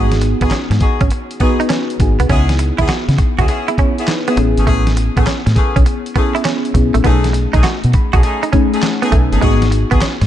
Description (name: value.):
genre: R&B, new jack swing.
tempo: 101 BPM.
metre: 4/4.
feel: swing 67% on 16ths.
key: C# minor.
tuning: A4 = 439 Hz.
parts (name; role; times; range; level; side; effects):
mellow FM electric piano; accompaniment; 0.0-10.3 s; A3 to B5; -20 LUFS; left 2 dB; chorus, phaser.
direct-recorded clean electric guitar; riff; 0.0-10.2 s; G#3 to F#4; -21 LUFS; right 6 dB; wide subtle chorus.
clear horn section; stabs; 0.0-10.0 s; A3 to G#4; -23 LUFS; left 3 dB; tape echo.
deep dub fingered electric bass; bass; 0.0-10.3 s; G1 to C#3; -15 LUFS; equal; none.
dusty soul sampler-style drum kit; drums; 0.1-10.3 s; handclaps, hi-hat, kick drum, snare drum; -16 LUFS; equal; vintage 12-bit sampler grit.
room: light reverb, digital ambience.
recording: dark, warm production.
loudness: -12 LUFS.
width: side -11 dB against mid.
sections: 0.0-10.3 A section.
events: FM electric piano fill 7.6-9.4.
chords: 0.0 G#m7; 2.3 C#m7; 4.4 Amaj9; 7.0 B13; 9.4 G#m7.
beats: 0.51 1.11 1.70 | 2.29 2.89 3.48 4.08 | 4.67 5.26 5.86 6.45 | 7.05 7.64 8.24 8.83 | 9.42 10.02.